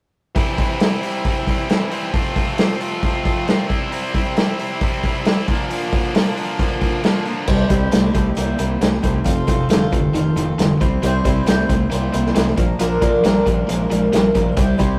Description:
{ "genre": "classic rock", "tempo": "135 BPM", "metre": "4/4", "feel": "straight", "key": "C mixolydian", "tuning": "A4 = 440 Hz", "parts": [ { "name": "tight distorted guitar", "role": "riff", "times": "0.4-15.0 s", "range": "F2 to F4", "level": "-26 LUFS", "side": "equal", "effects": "distortion" }, { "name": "tight distorted guitar", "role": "riff", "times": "0.4-15.0 s", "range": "F2 to C4", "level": "-28 LUFS", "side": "equal", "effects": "distortion" }, { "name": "vintage drum kit", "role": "drums", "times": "0.4-14.9 s", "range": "crash cymbal, hi-hat, kick drum, snare drum", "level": "-22 LUFS", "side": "equal", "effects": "none" }, { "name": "picked twelve-string acoustic guitar", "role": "accompaniment", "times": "7.5-15.0 s", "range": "Bb2 to C5", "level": "-24 LUFS", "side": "equal", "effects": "none" }, { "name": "growling fingered electric bass", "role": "bass", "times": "7.5-15.0 s", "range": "F1 to C2", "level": "-24 LUFS", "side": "equal", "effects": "overdrive" } ], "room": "moderate stone room reverb, RT60 0.9 s", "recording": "rough rehearsal-room recording, tube saturation", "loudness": "-18 LUFS", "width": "mono", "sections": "0.4-7.5 A section; 7.5-15.0 B section", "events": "none", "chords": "0.4 C; 2.1 F; 3.7 C; 5.5 Bb; 7.5 C; 9.3 F; 10.8 C; 12.6 Bb" }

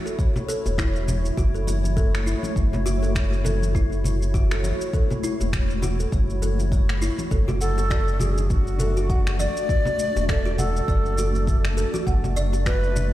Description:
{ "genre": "organic downtempo", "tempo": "101 BPM", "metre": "4/4", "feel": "swing 57% on 16ths", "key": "F# minor", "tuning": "A4 = 440 Hz", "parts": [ { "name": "granular cloud pad", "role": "sustained chords", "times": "0.0-13.1 s", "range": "A3 to D5", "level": "-31 LUFS", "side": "equal", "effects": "built-in reverb, sidechain pumping" }, { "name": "kalimba", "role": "arpeggios", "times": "0.0-12.8 s", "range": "E4 to F#5", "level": "-31 LUFS", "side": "equal", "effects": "ping-pong delay" }, { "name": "electronic shaker and finger snaps", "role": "drums", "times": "0.1-13.1 s", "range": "none", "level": "-34 LUFS", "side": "equal", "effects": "studio reverb" }, { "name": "electronic kick drum", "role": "drums", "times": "0.2-12.8 s", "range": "none", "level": "-22 LUFS", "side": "equal", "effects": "studio reverb" }, { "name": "congas and bongos", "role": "percussion", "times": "0.4-13.1 s", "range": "none", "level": "-31 LUFS", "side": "left 1 dB", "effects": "none" }, { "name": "warm sub bass", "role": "bass", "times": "0.7-13.1 s", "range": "E1 to F#1", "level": "-23 LUFS", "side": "equal", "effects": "sidechain pumping" }, { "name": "breathy Native American-style cedar flute", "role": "melody", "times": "7.6-13.1 s", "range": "F#4 to D5", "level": "-28 LUFS", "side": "left 1 dB", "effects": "digital delay" } ], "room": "light reverb, small room ambience", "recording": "played on a big sound system in a bare room, large studio reverb", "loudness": "-20 LUFS", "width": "side -14 dB against mid", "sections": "0.0-13.1 A section", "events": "none", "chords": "0.0 F#m7; 7.3 D" }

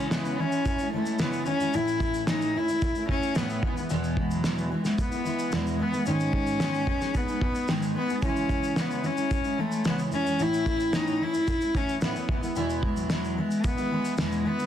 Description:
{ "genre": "acoustic pop", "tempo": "111 BPM", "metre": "4/4", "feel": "straight", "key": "E major", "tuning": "A4 = 440 Hz", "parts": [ { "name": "warm cello", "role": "melody", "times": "0.0-14.7 s", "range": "F#3 to E4", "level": "-28 LUFS", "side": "left 2 dB", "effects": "tape echo" }, { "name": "fingerpicked steel-string acoustic guitar", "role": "accompaniment", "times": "0.0-14.7 s", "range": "E2 to G#4", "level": "-30 LUFS", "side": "equal", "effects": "double-tracked left and right" }, { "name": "cloth-damped thuddy drum kit", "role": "drums", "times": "0.1-14.7 s", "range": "kick drum, shaker, snare drum", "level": "-31 LUFS", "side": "equal", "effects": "none" } ], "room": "moderate studio reverb, RT60 0.5 s", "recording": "dense, heavily limited modern master", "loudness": "-24 LUFS", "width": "side -10 dB against mid", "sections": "0.0-14.7 A section", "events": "none", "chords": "0.0 C#m; 1.7 A; 3.6 E; 6.1 G#m; 8.2 C#m; 10.4 A; 12.3 E" }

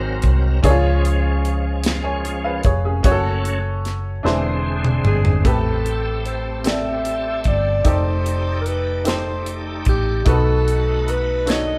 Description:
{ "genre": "slow gospel", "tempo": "50 BPM (dotted quarters)", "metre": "6/8", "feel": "straight", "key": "A minor from 5.5 s", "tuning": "A4 = 440 Hz", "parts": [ { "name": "bright upright piano", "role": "accompaniment", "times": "0.0-11.8 s", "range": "G#2 to G#5", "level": "-27 LUFS", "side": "equal", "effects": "none" }, { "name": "bright tonewheel organ", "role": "sustained chords", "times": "0.0-11.8 s", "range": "D3 to D5", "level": "-30 LUFS", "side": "equal", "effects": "slow rotary speaker, chorus vibrato" }, { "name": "hollow-body short-scale fingered electric bass", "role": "bass", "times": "0.0-11.8 s", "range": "E1 to C#2", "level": "-23 LUFS", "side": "equal", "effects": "none" }, { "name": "tight funk drum kit", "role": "drums", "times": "0.2-11.7 s", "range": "hi-hat, kick drum, snare drum, toms", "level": "-23 LUFS", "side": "equal", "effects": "none" }, { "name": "warm alto saxophone", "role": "melody", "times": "5.1-11.8 s", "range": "G4 to E5", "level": "-26 LUFS", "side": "equal", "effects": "none" } ], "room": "moderate studio reverb, RT60 0.7 s", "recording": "band playing live in one room", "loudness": "-19 LUFS", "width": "mono", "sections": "0.0-5.5 A section; 5.5-11.8 B section", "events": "tonewheel organ solo 0.0-5.5; drum fill 4.2-5.5", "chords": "0.0 G#7; 0.6 C#; 3.0 F#m; 4.2 E7alt; 5.5 Am9; 7.9 F13; 10.3 B7" }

